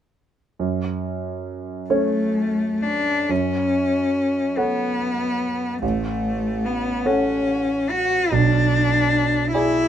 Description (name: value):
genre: classical, romantic duo for cello and grand piano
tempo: 40-51 BPM (dotted quarters)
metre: 6/8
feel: rubato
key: F# minor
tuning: A4 = 438 Hz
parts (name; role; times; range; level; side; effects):
- clear concert grand piano; accompaniment; 0.6-9.9 s; A1 to G#5; -23 LUFS; right 3 dB; none
- clear cello; melody; 1.9-9.9 s; A3 to F#4; -20 LUFS; left 2 dB; none
room: light reverb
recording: close, detailed microphones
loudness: -19 LUFS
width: side -10 dB against mid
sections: 0.6-3.3 A section; 3.3-9.9 B section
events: none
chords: 0.6 F#m; 5.8 F#m/A; 8.3 G#dim/B